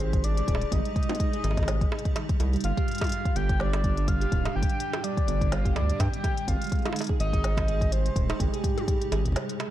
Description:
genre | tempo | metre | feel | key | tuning
IDM | 125 BPM | 4/4 | swing 56% on 16ths | unclear | A4 = 441 Hz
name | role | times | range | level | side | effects
warbly nostalgic lead | melody | 0.0-9.7 s | G4 to G5 | -33 LUFS | left 1 dB | chorus, cassette tape, tape echo
granular cloud pad | sustained chords | 0.0-9.7 s | Bb2 to G4 | -36 LUFS | equal | built-in reverb, vintage 12-bit sampler grit
harp-like synth pluck | arpeggios | 0.0-9.7 s | G2 to Ab4 | -35 LUFS | right 6 dB | chorus, vintage 12-bit sampler grit, tape echo
round analog bass | bass | 0.0-9.4 s | D1 to G2 | -27 LUFS | equal | none
organic electronic drum kit | drums | 0.0-9.7 s | bongos, hi-hat, snare drum, toms | -35 LUFS | right 1 dB | none
electronic kick drum | drums | 0.1-9.4 s | none | -27 LUFS | equal | none
room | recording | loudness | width
digital ambience | dark, warm production | -24 LUFS | side -13 dB against mid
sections
0.0-9.7 A section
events
break 9.4-9.7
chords
0.0 Abmaj7; 2.6 Gm; 6.5 Abmaj7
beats
0.24 | 0.72 1.20 1.68 2.16 | 2.64 3.12 3.60 4.08 | 4.56 5.04 5.52 6.00 | 6.48 6.96 7.44 7.92 | 8.40 8.88 9.36

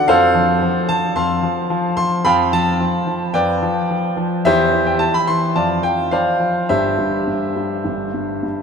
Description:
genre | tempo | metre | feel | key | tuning
classical-period piano sonatina | 109 BPM | 4/4 | uneven beats, rubato | C major | A4 = 440 Hz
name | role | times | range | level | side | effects
warm concert grand piano | solo | 0.0-8.6 s | G1 to C6 | -15 LUFS | equal | none
room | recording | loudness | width
wet cathedral reverb, RT60 5.9 s | in a vast, echoing space | -15 LUFS | side -6 dB against mid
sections
0.0-8.6 A section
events
none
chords
0.1 F; 2.3 G7/F; 4.5 C/E; 5.6 Dm7/F; 6.7 C/G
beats
| 0.08 0.62 1.17 1.71 | 2.25 2.80 3.35 3.90 | 4.45 5.00 5.55 6.11 | 6.69 7.27 7.85 8.43

